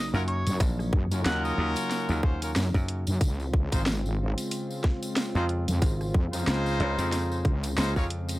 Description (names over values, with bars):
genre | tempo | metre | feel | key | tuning
glitch hop | 92 BPM | 4/4 | swing 57% on 16ths | unclear | A4 = 440 Hz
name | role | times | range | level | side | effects
mellow harmonica | melody | 0.0-1.7 s | Db5 to Gb5 | -35 LUFS | equal | analog delay
warm analog pad | sustained chords | 0.0-8.4 s | Db3 to F4 | -34 LUFS | equal | chorus, sidechain pumping
impact | sound effects | 0.0-0.6 s | none | -54 LUFS | equal | none
brilliant horn section | stabs | 0.1-8.1 s | Db4 to Db5 | -32 LUFS | left 1 dB | sidechain pumping, analog delay
dry thumbed slap bass | bass | 0.1-8.4 s | Ab1 to Gb2 | -28 LUFS | equal | none
tambourine | percussion | 0.1-8.4 s | none | -41 LUFS | left 2 dB | none
drum and bass drum kit | drums | 0.3-8.4 s | hi-hat, rim click, snare drum | -31 LUFS | equal | small room ambience
wobble bass | bass | 0.5-7.8 s | Ab1 to Gb2 | -28 LUFS | equal | chorus, overdrive
electronic kick drum | drums | 0.6-8.1 s | none | -24 LUFS | equal | small room ambience
room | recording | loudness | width
little or no reverb | dry, gritty hardware recording | -24 LUFS | side -18 dB against mid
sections
0.0-8.4 A section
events
impact 0.0-0.6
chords
0.0 Ebm7; 3.2 Dbmaj7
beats
| 0.60 1.25 1.91 2.56 | 3.21 3.86 4.51 5.17 | 5.82 6.47 7.12 7.78